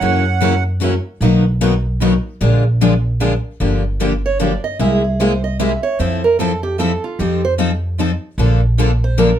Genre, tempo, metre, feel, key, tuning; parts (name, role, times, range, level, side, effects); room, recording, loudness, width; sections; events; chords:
acoustic string swing (jazz manouche); 151 BPM; 3/4; swing 63% on 8ths; G minor from 3.6 s; A4 = 438 Hz
accordion; melody; 0.0-0.6 s; Gb5; -18 LUFS; right 9 dB; plate reverb
picked acoustic archtop guitar; second line; 0.0-0.6, 4.3-9.4 s; Db4 to E5; -19 LUFS; right 4 dB
picked steel-string acoustic guitar; accompaniment; 0.0-9.3 s; B2 to Bb4; -18 LUFS; left 6 dB
picked steel-string acoustic guitar; accompaniment; 0.0-9.3 s; B2 to Bb4; -22 LUFS; right 6 dB
upright bass; bass; 0.0-9.3 s; G1 to Gb2; -17 LUFS; right 1 dB
moderate studio reverb, RT60 0.5 s; -14 LUFS; side -10 dB against mid
0.0-3.6 A section; 3.6-9.4 B section
steel-string acoustic guitar solo 3.6-9.4
0.0 Gb7; 1.2 Bmaj7; 2.4 Bb7; 3.6 Gm7; 4.8 Caug7; 6.0 Fmaj7; 7.2 F7; 8.4 Bbmaj7